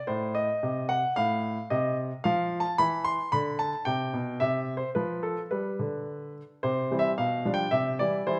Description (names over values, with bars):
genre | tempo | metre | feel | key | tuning
classical-period piano sonatina | 111 BPM | 2/4 | straight | C major | A4 = 439 Hz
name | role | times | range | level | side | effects
clear baby grand piano | solo | 0.0-8.4 s | A2 to C6 | -28 LUFS | equal | none
room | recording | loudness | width
moderate recital hall reverb, RT60 1.4 s | none | -28 LUFS | mono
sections
0.0-6.6 A section; 6.6-8.4 B section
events
none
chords
0.1 Adim; 2.3 Fmaj7#11; 3.3 G/D; 4.4 N.C.; 5.5 G; 6.6 C; 7.2 G7/B; 7.7 C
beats
| 0.10 0.64 | 1.18 1.72 | 2.26 2.79 | 3.33 3.87 | 4.41 4.96 | 5.51 6.08 | 6.64 7.19 | 7.73 8.27